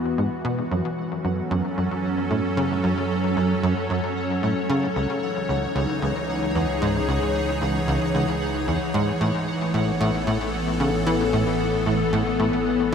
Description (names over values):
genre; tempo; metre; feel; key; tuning
ambient, sequencer-driven space music; 113 BPM; 4/4; straight; unclear; A4 = 439 Hz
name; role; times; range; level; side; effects
evolving wavetable pad; sustained chords; 0.0-12.9 s; E3 to C#5; -24 LUFS; left 1 dB; ensemble chorus, built-in reverb
analog drone; bass; 0.0-12.9 s; A1 to F#2; -32 LUFS; right 1 dB; chorus
pulsing gated texture; texture; 0.0-12.9 s; F#5; -37 LUFS; right 5 dB; chorus, built-in reverb
tight sequencer bass; riff; 0.2-12.9 s; C#2 to E3; -25 LUFS; equal; wide subtle chorus, ping-pong delay
room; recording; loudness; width
wet huge ambient reverb, RT60 8.1 s; dreamy mix soaked in reverb; -21 LUFS; side -7 dB against mid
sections
0.0-12.9 A section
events
fade-in on synth texture 0.0-12.9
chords
0.0 Esus2; 0.7 F#m; 5.0 C#madd9; 9.2 Aadd9